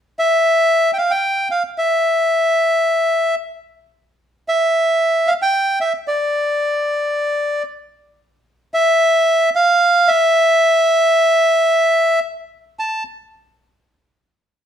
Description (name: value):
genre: tango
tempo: free time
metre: none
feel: none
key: unclear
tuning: A4 = 440 Hz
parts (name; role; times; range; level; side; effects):
- bandoneon; solo; 0.2-13.0 s; D5 to A5; -14 LUFS; equal; none
room: wet large studio reverb, RT60 1.0 s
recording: band playing live in one room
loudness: -14 LUFS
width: side -9 dB against mid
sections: 0.0-12.8 A section; 12.8-14.7 B section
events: none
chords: none